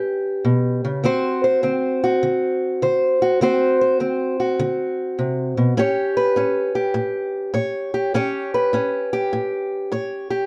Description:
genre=blues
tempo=101 BPM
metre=4/4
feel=swing 66% on 8ths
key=unclear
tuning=A4 = 440 Hz
part: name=fingerpicked old ladder-braced acoustic guitar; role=solo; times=0.0-10.5 s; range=A2 to C#5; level=-21 LUFS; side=equal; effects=none
room=light reverb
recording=dark, warm production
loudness=-21 LUFS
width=mono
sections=0.0-10.5 A section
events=none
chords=0.0 A7; 1.0 D7; 5.8 A7

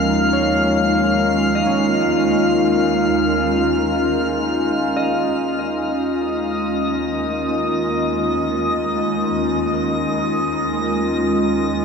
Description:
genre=ambient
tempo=free time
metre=none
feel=none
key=unclear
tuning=A4 = 440 Hz
part: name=warbly tape-like pad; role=sustained chords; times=0.0-11.8 s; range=Ab3 to Bb4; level=-18 LUFS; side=equal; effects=chorus, built-in reverb, shimmer reverb
part: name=concert harp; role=arpeggios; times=0.0-7.2 s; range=F3 to Eb5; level=-27 LUFS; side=equal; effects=ping-pong delay, shimmer reverb
part: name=dark studio cello section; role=bass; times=0.0-11.8 s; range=Eb2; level=-30 LUFS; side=right 1 dB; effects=none
part: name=drifting glass-harmonics texture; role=texture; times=0.0-11.8 s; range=Eb5 to F6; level=-22 LUFS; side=left 2 dB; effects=chorus, built-in reverb, shimmer reverb
room=wet huge ambient reverb, RT60 7.5 s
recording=dreamy mix soaked in reverb, cassette tape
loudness=-16 LUFS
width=side -5 dB against mid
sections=0.0-5.4 A section; 5.4-11.8 B section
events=filter sweep on ambient pad 0.0-5.4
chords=0.0 Ebsus2

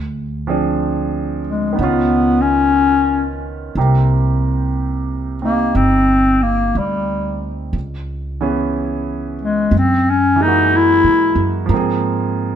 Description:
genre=jazz ballad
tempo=60 BPM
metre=4/4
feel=swing 67% on 8ths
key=unclear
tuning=A4 = 441 Hz
part: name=upright bass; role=bass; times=0.0-12.6 s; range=G1 to Ab2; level=-20 LUFS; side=right 1 dB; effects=none
part: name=clear concert grand piano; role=accompaniment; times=0.5-12.6 s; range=C3 to Ab4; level=-21 LUFS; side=right 5 dB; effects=none
part: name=growling clarinet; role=melody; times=1.5-11.6 s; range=G3 to Fb4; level=-14 LUFS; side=left 3 dB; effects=none
room=moderate echo chamber reverb, RT60 1.4 s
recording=minimal, uncompressed stereo recording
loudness=-14 LUFS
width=side -9 dB against mid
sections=0.0-12.6 A section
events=none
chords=0.0 Dm7b5; 1.8 Db9; 3.8 Cm7; 7.7 Dbm7; 9.7 Gb9; 11.7 Ab69

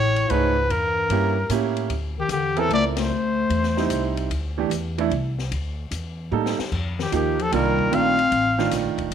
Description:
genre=modal jazz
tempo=150 BPM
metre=3/4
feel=swing 67% on 8ths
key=D phrygian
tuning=A4 = 440 Hz
part: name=clear trumpet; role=melody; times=0.0-4.2, 7.0-8.7 s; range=G4 to F5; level=-23 LUFS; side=equal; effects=none
part: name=mellow bass clarinet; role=second line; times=0.0-4.1, 7.0-8.7 s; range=G2 to C4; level=-26 LUFS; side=left 7 dB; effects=none
part: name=upright bass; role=bass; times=0.0-9.1 s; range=Eb1 to A2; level=-27 LUFS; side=equal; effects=none
part: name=open jazz drum kit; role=drums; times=0.2-9.1 s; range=crash cymbal, hi-hat, kick drum, ride cymbal, snare drum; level=-34 LUFS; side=left 7 dB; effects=none
part: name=clear baby grand piano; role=accompaniment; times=0.3-9.1 s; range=Eb3 to C#5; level=-24 LUFS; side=right 10 dB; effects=none
room=moderate plate reverb, RT60 1.1 s, studio ambience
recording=1960s-style stereo with parts hard left and right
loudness=-20 LUFS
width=side -8 dB against mid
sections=0.0-1.9 A section; 1.9-9.1 B section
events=band accent 2.9; drum fill 6.3-6.7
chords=0.0 F#madd9 (rootless); 0.7 A7b9; 1.9 D9sus4; 6.7 F9sus4

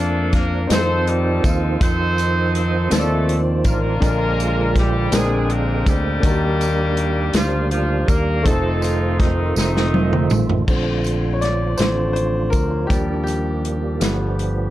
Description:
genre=slow gospel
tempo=54 BPM (dotted quarters)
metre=6/8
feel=straight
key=Bb major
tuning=A4 = 436 Hz
part: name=clear horn section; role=melody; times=0.0-10.6 s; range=Eb3 to C5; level=-23 LUFS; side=left 1 dB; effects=none
part: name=clear baby grand piano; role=accompaniment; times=0.0-14.7 s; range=Bb2 to A5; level=-24 LUFS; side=left 2 dB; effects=none
part: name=percussive tonewheel organ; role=sustained chords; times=0.0-14.7 s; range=Db3 to G5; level=-25 LUFS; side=right 4 dB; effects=slow rotary speaker, overdrive, chorus vibrato
part: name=fingered electric bass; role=bass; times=0.0-14.7 s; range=F1 to F2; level=-21 LUFS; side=equal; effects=none
part: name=warm soul drum kit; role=drums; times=0.3-14.6 s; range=crash cymbal, hi-hat, kick drum, snare drum, toms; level=-20 LUFS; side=equal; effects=none
part: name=tambourine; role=percussion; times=0.7-14.4 s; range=none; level=-34 LUFS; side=right 9 dB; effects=none
room=light reverb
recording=dark, warm production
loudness=-16 LUFS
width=side -14 dB against mid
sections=0.0-10.7 A section; 10.7-14.7 B section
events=drum fill 9.6-10.7; grand piano solo 10.7-14.7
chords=0.0 Bb/F; 0.7 F7; 4.0 Bb7; 5.1 Bb13; 6.2 Ebmaj7; 8.5 F7; 10.7 Bbmaj7; 12.9 Ebmaj7; 14.0 G7

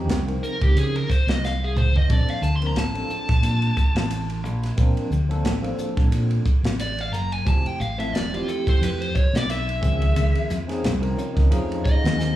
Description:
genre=electric jazz fusion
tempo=89 BPM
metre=4/4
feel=swing 56% on 16ths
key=unclear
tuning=A4 = 439 Hz
part: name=overdriven tine electric piano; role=accompaniment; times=0.0-12.4 s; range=Eb3 to G#5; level=-29 LUFS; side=equal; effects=fast tremolo, lush chorus, slapback echo
part: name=fingered electric bass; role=bass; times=0.0-12.4 s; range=E1 to Db3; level=-22 LUFS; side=equal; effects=none
part: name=crisp fusion drum kit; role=drums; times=0.1-12.4 s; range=hi-hat, kick drum, ride cymbal, snare drum, toms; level=-24 LUFS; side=equal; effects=none
part: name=dark smooth lead guitar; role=melody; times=0.4-12.4 s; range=F4 to C6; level=-28 LUFS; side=left 1 dB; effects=overdrive, slapback echo
room=studio reverb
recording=live gig heard through the venue's PA, club reverb, studio ambience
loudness=-20 LUFS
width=side -14 dB against mid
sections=0.0-12.4 A section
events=lead electric guitar solo 0.0-12.4; drum fill 1.4-2.1, 12.2; tine electric piano fill 10.8-12.4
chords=0.0 Dbmaj9; 2.1 Bbmaj9; 7.5 Fmaj9; 9.8 Dbmaj9; 11.5 F7alt

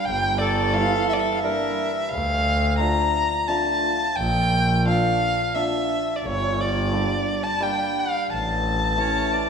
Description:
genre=klezmer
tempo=87 BPM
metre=3/4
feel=straight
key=unclear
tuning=A4 = 440 Hz
part: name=dark violin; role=melody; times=0.0-9.5 s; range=C#5 to Bb5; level=-23 LUFS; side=left 1 dB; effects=none
part: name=hammered dulcimer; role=accompaniment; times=0.0-9.5 s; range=E3 to D4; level=-28 LUFS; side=equal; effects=none
part: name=rich double bass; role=bass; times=0.1-9.5 s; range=G1 to D2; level=-25 LUFS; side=equal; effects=none
part: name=accordion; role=second line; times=0.4-1.9, 9.0-9.5 s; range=A4 to D5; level=-26 LUFS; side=right 1 dB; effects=none
room=wet recital hall reverb, RT60 1.7 s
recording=recorded in a church or concert hall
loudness=-20 LUFS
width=side -6 dB against mid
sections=0.0-9.5 A section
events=none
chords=0.0 Gm; 2.1 Dm; 4.2 Bb; 6.2 Gm; 8.3 A

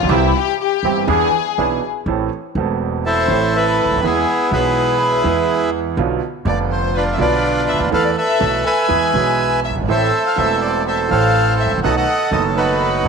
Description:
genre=tango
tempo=123 BPM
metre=4/4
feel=rubato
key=A harmonic minor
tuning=A4 = 441 Hz
part: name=warm studio violin section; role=second line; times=0.0-13.1 s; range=E4 to G#5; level=-22 LUFS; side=left 13 dB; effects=none
part: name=clear concert grand piano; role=accompaniment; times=0.0-13.1 s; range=E1 to A4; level=-21 LUFS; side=right 10 dB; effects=none
part: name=upright bass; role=bass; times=0.0-13.1 s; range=E1 to E2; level=-22 LUFS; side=left 1 dB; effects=none
part: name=bandoneon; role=stabs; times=0.1-1.8, 9.9-13.1 s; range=E3 to A4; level=-26 LUFS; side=right 9 dB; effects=none
part: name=bandoneon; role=melody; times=3.1-13.1 s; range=B3 to G#5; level=-17 LUFS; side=right 1 dB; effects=slapback echo
room=light reverb, small room reverb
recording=1960s-style stereo with parts hard left and right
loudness=-14 LUFS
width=side -5 dB against mid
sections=0.0-2.1 A section; 2.1-13.1 B section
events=violin section solo 0.0-2.1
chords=0.1 C; 1.1 E7; 2.1 Am; 4.0 E; 6.0 Bdim; 7.9 Esus4; 8.9 E; 9.9 Am; 11.8 B7

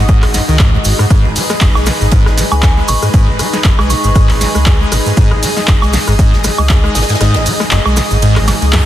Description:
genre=acid house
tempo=118 BPM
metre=4/4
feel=swing 55% on 16ths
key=G# minor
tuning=A4 = 440 Hz
part: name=lush unison pad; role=sustained chords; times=0.0-8.9 s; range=G#3 to D#5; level=-18 LUFS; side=left 1 dB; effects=chorus, sidechain pumping
part: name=acid bass, saw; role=riff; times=0.0-8.8 s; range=G#1 to G#3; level=-15 LUFS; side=equal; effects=lush chorus
part: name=warm sub bass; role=bass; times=0.0-8.9 s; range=F#1 to C#2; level=-15 LUFS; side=equal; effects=sidechain pumping
part: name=electronic kick drum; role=drums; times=0.1-6.8 s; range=none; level=-10 LUFS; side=equal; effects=overdrive
part: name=modern studio drum kit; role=drums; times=0.1-8.9 s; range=hi-hat, ride cymbal, snare drum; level=-26 LUFS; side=right 1 dB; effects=none
part: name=cabasa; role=percussion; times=0.1-8.8 s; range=none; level=-24 LUFS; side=right 4 dB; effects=none
part: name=punchy analog drum machine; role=drums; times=0.2-8.8 s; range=handclaps, hi-hat, ride cymbal, rim click, snare drum, woodblock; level=-17 LUFS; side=right 1 dB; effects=overdrive
part: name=glassy synth bell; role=melody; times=2.5-4.6 s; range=G#5 to C#6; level=-21 LUFS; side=right 1 dB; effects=chorus, ping-pong delay
room=light reverb, small room ambience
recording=dense, heavily limited modern master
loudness=-9 LUFS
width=side -12 dB against mid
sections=0.0-8.9 A section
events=kick drops out 7.2-8.9; drum fill 8.5-8.9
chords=0.0 G#m7

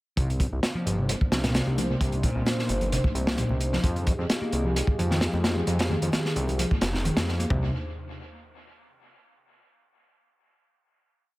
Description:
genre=breakbeat, breaks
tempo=131 BPM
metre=4/4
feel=straight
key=C minor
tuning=A4 = 440 Hz
part: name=dark analog pad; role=sustained chords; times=0.2-7.7 s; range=Bb3 to C5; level=-33 LUFS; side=equal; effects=chorus, sidechain pumping
part: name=overdriven picked electric bass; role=riff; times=0.2-7.7 s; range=Bb2 to Eb4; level=-30 LUFS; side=equal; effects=vintage 12-bit sampler grit, dub echo
part: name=fat analog bass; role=bass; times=0.2-7.7 s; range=F1 to F2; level=-28 LUFS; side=equal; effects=none
part: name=crunchy breakbeat drum kit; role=drums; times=0.2-7.6 s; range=hi-hat, kick drum, snare drum, toms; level=-27 LUFS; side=equal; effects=dub echo
part: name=congas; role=percussion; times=1.3-7.3 s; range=none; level=-38 LUFS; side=left 2 dB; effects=none
room=light reverb, studio reverb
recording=echo-heavy mix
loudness=-23 LUFS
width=side -19 dB against mid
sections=0.2-7.5 groove; 7.5-9.3 final chord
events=none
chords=0.2 Cm9; 3.8 Fm9; 7.5 Cm9

